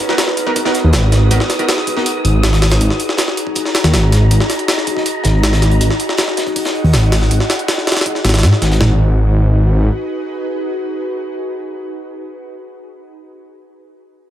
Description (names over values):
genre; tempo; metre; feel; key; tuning
drum and bass, jungle; 160 BPM; 4/4; straight; G# minor; A4 = 444 Hz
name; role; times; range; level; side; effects
ethereal airy pad; sustained chords; 0.0-12.6 s; D#4 to D#5; -21 LUFS; left 1 dB; ensemble chorus, built-in reverb
crunchy breakbeat drum kit; drums; 0.0-8.8 s; hi-hat, snare drum; -26 LUFS; left 2 dB; high-pass filter on hats, high-pass filter on snare, high-pass filter on room
jungle sampler-style drum kit; drums; 0.0-8.9 s; hi-hat, kick drum, snare drum, toms; -18 LUFS; equal; high-pass filter on snare, high-pass filter on hats, high-pass filter on kick, high-pass filter on toms, high-pass filter on room
wind-like tuned noise texture; texture; 0.0-8.8 s; F#5 to D#6; -28 LUFS; equal; built-in reverb
orchestra-hit-like synth stab; stabs; 0.1-2.1 s; B3 to A#4; -21 LUFS; right 1 dB; built-in reverb, dub echo
detuned saw bass; bass; 0.8-9.9 s; G#1 to G#2; -11 LUFS; equal; none
room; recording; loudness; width
light reverb; none; -12 LUFS; side -12 dB against mid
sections
0.0-8.8 A section; 8.8-11.8 B section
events
filter sweep on detuned saw bass 0.0-8.8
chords
0.0 G#m7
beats
0.18 0.56 0.93 | 1.31 1.68 2.06 2.43 | 2.81 3.18 3.56 3.93 | 4.31 4.68 5.06 5.43 | 5.81 6.18 6.56 6.93 | 7.31 7.68 8.06 8.43 | 8.81 9.18 9.56 9.93 | 10.31 10.68 11.06 11.43